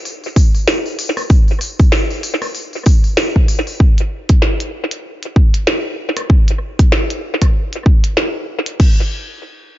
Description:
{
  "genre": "glitch hop",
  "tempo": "96 BPM",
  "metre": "4/4",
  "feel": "swing 58% on 16ths",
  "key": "none",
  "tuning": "none",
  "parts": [
    { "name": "glitchy drum kit", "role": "drums", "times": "0.1-8.9 s", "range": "crash cymbal, hi-hat, rim click, snare drum", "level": "-19 LUFS", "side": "equal", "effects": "analog delay" },
    { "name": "electronic kick drum", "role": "drums", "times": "0.4-8.9 s", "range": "none", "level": "-11 LUFS", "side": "equal", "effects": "none" }
  ],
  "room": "little or no reverb",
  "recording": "echo-heavy mix, nothing above 7.5 kHz",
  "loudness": "-12 LUFS",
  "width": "side -15 dB against mid",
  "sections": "0.0-3.8 A section; 3.8-8.8 B section",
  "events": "drop 0.0-3.8",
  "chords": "none"
}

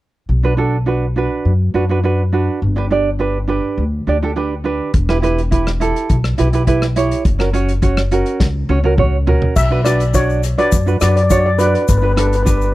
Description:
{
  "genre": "calypso",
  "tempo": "104 BPM",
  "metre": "4/4",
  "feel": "straight",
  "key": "B minor",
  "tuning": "A4 = 441 Hz",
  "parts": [
    { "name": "upright bass", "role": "bass", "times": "0.3-12.7 s", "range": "E1 to F#2", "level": "-17 LUFS", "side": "equal", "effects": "none" },
    { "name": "tenor ukulele", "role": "accompaniment", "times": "0.4-12.7 s", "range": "C#4 to D5", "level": "-18 LUFS", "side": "right 4 dB", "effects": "none" },
    { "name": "warm soul drum kit", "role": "drums", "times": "4.9-12.6 s", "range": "crash cymbal, hi-hat, kick drum, rim click, snare drum, toms", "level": "-18 LUFS", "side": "equal", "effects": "none" },
    { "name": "steel pan", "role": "melody", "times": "9.6-12.7 s", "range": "B4 to E5", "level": "-18 LUFS", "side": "left 3 dB", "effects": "tape echo" },
    { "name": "tube shaker", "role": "percussion", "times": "9.6-12.7 s", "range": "none", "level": "-30 LUFS", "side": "left 16 dB", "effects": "none" }
  ],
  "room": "small room ambience",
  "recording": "none",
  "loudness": "-13 LUFS",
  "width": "side -16 dB against mid",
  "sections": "0.3-9.6 A section; 9.6-12.7 B section",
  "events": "drum fill 8.4-9.6",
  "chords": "0.3 Bm; 2.6 G; 4.9 Em; 7.2 F#; 9.6 Bm; 11.9 G"
}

